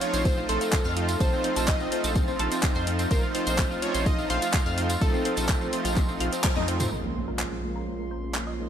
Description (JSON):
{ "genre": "progressive house", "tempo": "126 BPM", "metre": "4/4", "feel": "straight", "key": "unclear", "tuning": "A4 = 440 Hz", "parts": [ { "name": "plucky unison lead", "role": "melody", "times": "0.0-6.4 s", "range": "A4 to F5", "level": "-32 LUFS", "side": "equal", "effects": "sidechain pumping, dub echo" }, { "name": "lush unison pad", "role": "sustained chords", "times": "0.0-8.7 s", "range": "Db4 to Bb5", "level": "-36 LUFS", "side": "equal", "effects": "chorus, sidechain pumping" }, { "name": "tight sequenced synth", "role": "arpeggios", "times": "0.0-8.7 s", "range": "Bb3 to F5", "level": "-32 LUFS", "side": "left 1 dB", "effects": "chorus, phaser, sidechain pumping, dub echo" }, { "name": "soft supersaw", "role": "stabs", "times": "0.0-8.7 s", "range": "F3 to F4", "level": "-31 LUFS", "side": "right 3 dB", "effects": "sidechain pumping, low-pass filter, dub echo" }, { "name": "deep house drum kit", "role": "drums", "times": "0.0-8.4 s", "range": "handclaps, hi-hat, toms", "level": "-31 LUFS", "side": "equal", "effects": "sidechain pumping on hats, sidechain pumping on toms" }, { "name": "drifting glass-harmonics texture", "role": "texture", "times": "0.0-8.7 s", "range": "C6", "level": "-43 LUFS", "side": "right 2 dB", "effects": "none" }, { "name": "round analog bass", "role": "bass", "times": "0.1-8.7 s", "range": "Bb1 to F2", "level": "-31 LUFS", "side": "equal", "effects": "tube saturation, sidechain pumping" }, { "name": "tambourine", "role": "percussion", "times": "0.1-6.9 s", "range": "none", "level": "-38 LUFS", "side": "right 2 dB", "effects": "none" }, { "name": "electronic kick drum", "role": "drums", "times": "0.3-6.5 s", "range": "none", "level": "-26 LUFS", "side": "equal", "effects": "none" }, { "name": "impact", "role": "sound effects", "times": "6.9-8.7 s", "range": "none", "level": "-39 LUFS", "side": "equal", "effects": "none" } ], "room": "light reverb, digital ambience", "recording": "none", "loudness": "-23 LUFS", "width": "side -9 dB against mid", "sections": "0.0-6.9 A section; 6.9-8.7 B section", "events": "drop 0.0-6.9; drum fill 6.4-6.9; band accent 6.4; impact 6.9-8.7; filter sweep on synth arpeggio sound 6.9-8.7", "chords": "0.0 F7/Bb; 6.9 Bbm7" }